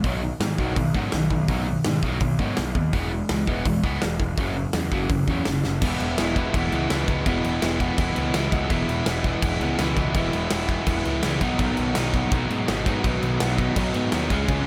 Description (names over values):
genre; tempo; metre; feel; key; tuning
punk rock; 166 BPM; 4/4; straight; unclear; A4 = 440 Hz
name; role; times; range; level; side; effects
distorted electric guitar; riff; 0.0-14.7 s; F#2 to E#4; -28 LUFS; equal; distortion
fuzz picked electric bass; bass; 0.0-14.6 s; E1 to G#2; -30 LUFS; equal; overdrive
big rock drum kit; drums; 0.0-14.6 s; crash cymbal, hi-hat, kick drum, snare drum; -29 LUFS; equal; none
crunchy overdriven guitar; riff; 5.8-14.7 s; E2 to C#4; -31 LUFS; equal; none
room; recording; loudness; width
little or no reverb; none; -24 LUFS; mono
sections
0.0-5.8 A section; 5.8-14.7 B section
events
drum fill 5.6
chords
0.0 B; 2.9 E; 4.4 F#5; 5.8 E; 11.4 B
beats
| 0.04 0.41 0.77 1.13 | 1.49 1.85 2.21 2.58 | 2.94 3.30 3.66 4.02 | 4.38 4.74 5.11 5.47 | 5.83 6.19 6.55 6.91 | 7.27 7.63 7.99 8.35 | 8.71 9.07 9.43 9.79 | 10.15 10.51 10.87 11.23 | 11.59 11.96 12.32 12.68 | 13.04 13.40 13.77 14.13 | 14.49